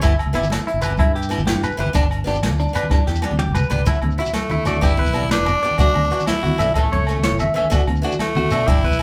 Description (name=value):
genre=highlife guitar band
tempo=125 BPM (dotted quarters)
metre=12/8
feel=straight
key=D major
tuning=A4 = 440 Hz
part: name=picked swing-style acoustic guitar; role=accompaniment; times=0.0-9.0 s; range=E3 to G4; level=-30 LUFS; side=equal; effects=none
part: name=clean electric guitar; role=arpeggios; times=0.0-9.0 s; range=D4 to E5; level=-26 LUFS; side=equal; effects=none
part: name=fingered electric bass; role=bass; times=0.0-9.0 s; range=E1 to B2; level=-26 LUFS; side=equal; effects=none
part: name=jazz brush drum kit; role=drums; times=0.0-9.0 s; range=hi-hat, kick drum, snare drum, toms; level=-24 LUFS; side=equal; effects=none
part: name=agogo bells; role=percussion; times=0.0-9.0 s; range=none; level=-34 LUFS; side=equal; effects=none
part: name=congas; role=percussion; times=0.0-8.8 s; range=none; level=-29 LUFS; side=equal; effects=none
part: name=shekere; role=percussion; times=0.0-9.0 s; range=none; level=-32 LUFS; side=equal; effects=none
part: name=raspy tenor saxophone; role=melody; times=4.3-9.0 s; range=A3 to E4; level=-24 LUFS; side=equal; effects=none
room=moderate studio reverb, RT60 0.9 s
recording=band playing live in one room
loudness=-19 LUFS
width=mono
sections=0.0-3.9 A section; 3.9-9.0 B section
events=drum fill 2.9-3.9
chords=0.0 Em/G; 1.9 G; 3.9 Dadd9; 4.8 G; 5.8 Dadd9; 6.8 A; 7.7 Dadd9